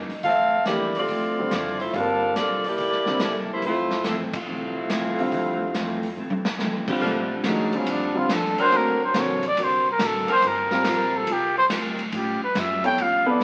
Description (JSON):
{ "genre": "jazz, big band swing", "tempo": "141 BPM", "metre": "4/4", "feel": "swing 67% on 8ths", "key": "F major, Bb major from 7.0 s", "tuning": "A4 = 440 Hz", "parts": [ { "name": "picked steel-string acoustic guitar", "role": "accompaniment", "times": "0.0-13.4 s", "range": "F2 to Bb4", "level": "-34 LUFS", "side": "equal", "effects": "none" }, { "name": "upright bass", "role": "bass", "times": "0.0-13.4 s", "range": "F1 to C3", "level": "-39 LUFS", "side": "equal", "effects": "none" }, { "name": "swinging big-band drum kit", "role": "drums", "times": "0.1-13.4 s", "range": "crash cymbal, hi-hat, kick drum, ride cymbal, snare drum, toms", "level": "-32 LUFS", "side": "equal", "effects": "none" }, { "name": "mellow saxophone section", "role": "melody", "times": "0.2-6.6 s", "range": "F3 to F5", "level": "-26 LUFS", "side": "equal", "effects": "none" }, { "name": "warm concert grand piano", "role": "accompaniment", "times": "0.7-13.4 s", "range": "D3 to E5", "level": "-29 LUFS", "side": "equal", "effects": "none" }, { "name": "warm saxophone section", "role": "sustained chords", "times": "7.0-10.8 s", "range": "F3 to Bb4", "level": "-30 LUFS", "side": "equal", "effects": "none" }, { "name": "breathy trumpet", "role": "melody", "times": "7.5-13.4 s", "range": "Db4 to G5", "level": "-24 LUFS", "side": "equal", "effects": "none" } ], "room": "wet studio reverb, RT60 0.8 s", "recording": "very old 78 rpm record, vinyl crackle", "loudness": "-23 LUFS", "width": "mono", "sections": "0.0-7.0 A section; 7.0-13.4 B section", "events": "band accent 4.3; drum fill 6.2-6.6; trumpet solo 7.0-13.4", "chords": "0.2 Fmaj7; 1.1 Dm9; 1.9 Gm9; 2.8 C13; 3.6 Fmaj7; 7.0 Bbmaj7; 8.7 D7b13; 10.4 Gm7; 12.1 A7b13" }